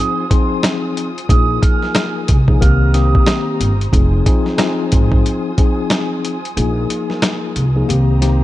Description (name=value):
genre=hip hop, boom-bap hip-hop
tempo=91 BPM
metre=4/4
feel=swing 60% on 16ths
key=F minor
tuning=A4 = 443 Hz
part: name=vibraphone with soft mallets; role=melody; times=0.0-3.4 s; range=C6 to F6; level=-23 LUFS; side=right 5 dB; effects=high-pass filter, low-pass filter, ping-pong delay
part: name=mellow tine electric piano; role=accompaniment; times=0.0-8.4 s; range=Eb3 to Ab4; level=-19 LUFS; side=left 3 dB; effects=medium stereo tremolo, cassette tape, high-pass filter, low-pass filter
part: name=warm studio string section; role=sustained chords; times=0.0-8.4 s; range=F4 to Eb6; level=-29 LUFS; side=equal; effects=high-pass filter, low-pass filter
part: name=dusty soul sampler-style drum kit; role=drums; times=0.3-8.4 s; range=hi-hat, kick drum, snare drum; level=-15 LUFS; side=equal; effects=none
part: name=upright bass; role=bass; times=1.3-8.4 s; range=F1 to C2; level=-15 LUFS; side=equal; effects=none
room=little or no reverb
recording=dark, warm production, nothing above 10.7 kHz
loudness=-13 LUFS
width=side -15 dB against mid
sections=0.0-8.4 A section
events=kick muted 6.6-8.4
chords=0.0 Fm7; 1.3 Bb7sus4; 2.6 Cm7; 3.9 Fm7; 6.6 Bb7sus4; 7.9 Cm7